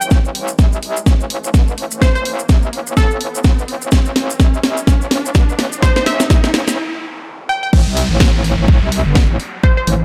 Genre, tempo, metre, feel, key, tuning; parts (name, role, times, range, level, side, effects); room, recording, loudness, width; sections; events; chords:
bass house; 126 BPM; 4/4; swing 58% on 16ths; A minor; A4 = 435 Hz
glassy wavetable pluck; melody; 0.0-9.8 s; A4 to G5; -23 LUFS; equal; chorus, tape echo
metallic wobble bass; bass; 0.0-10.0 s; G1 to C2; -22 LUFS; equal; chorus, sidechain pumping, high-pass filter
maracas; percussion; 0.0-6.8 s; -29 LUFS; equal
riser, noise sweep and downlifter; sound effects; 0.0-10.0 s; -29 LUFS; equal
electronic kick drum; drums; 0.1-9.7 s; -14 LUFS; equal
house drum kit; drums; 0.1-10.0 s; crash cymbal, hi-hat, snare drum; -22 LUFS; equal
little or no reverb; -15 LUFS; mono
0.0-7.7 A section; 7.7-10.0 B section
build-up 0.0-7.7; riser 0.0-6.8; drum fill 0.1-6.8; noise sweep 5.8-7.7; break 6.8-7.7; drop 7.7-10.0
0.0 Am